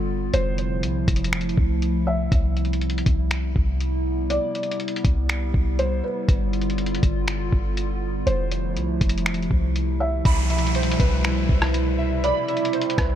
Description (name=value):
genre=hip hop, atmospheric cloud-rap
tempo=121 BPM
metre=4/4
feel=half-time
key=C major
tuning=A4 = 439 Hz
part: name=warbly tape-like pad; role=sustained chords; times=0.0-13.2 s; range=B2 to F4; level=-27 LUFS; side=equal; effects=chorus, built-in reverb, sidechain pumping
part: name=clean 808-style bass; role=bass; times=0.0-13.2 s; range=F1 to C2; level=-24 LUFS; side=equal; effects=none
part: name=felt-muted upright piano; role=melody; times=0.3-12.7 s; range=B4 to E5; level=-28 LUFS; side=equal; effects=digital delay
part: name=lo-fi sampler-style drum kit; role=drums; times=0.3-13.1 s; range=finger snaps, hi-hat, kick drum, rim click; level=-24 LUFS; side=equal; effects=none
part: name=downlifter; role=sound effects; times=10.2-13.2 s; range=none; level=-31 LUFS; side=equal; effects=none
part: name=warbly lo-fi synth keys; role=arpeggios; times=10.3-13.2 s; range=E4 to B5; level=-28 LUFS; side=right 3 dB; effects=chorus, digital delay
room=digital ambience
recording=none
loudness=-20 LUFS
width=side -10 dB against mid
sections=0.0-10.3 A section; 10.3-13.2 B section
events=none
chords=0.3 Fmaj7; 2.3 Cmaj7; 6.3 G7; 8.3 Fmaj7; 10.3 Cmaj7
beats=| 0.33 0.83 1.33 1.82 | 2.32 2.81 3.31 3.81 | 4.30 4.80 5.29 5.79 | 6.29 6.78 7.28 7.77 | 8.27 8.76 9.26 9.76 | 10.25 10.75 11.24 11.74 | 12.23 12.73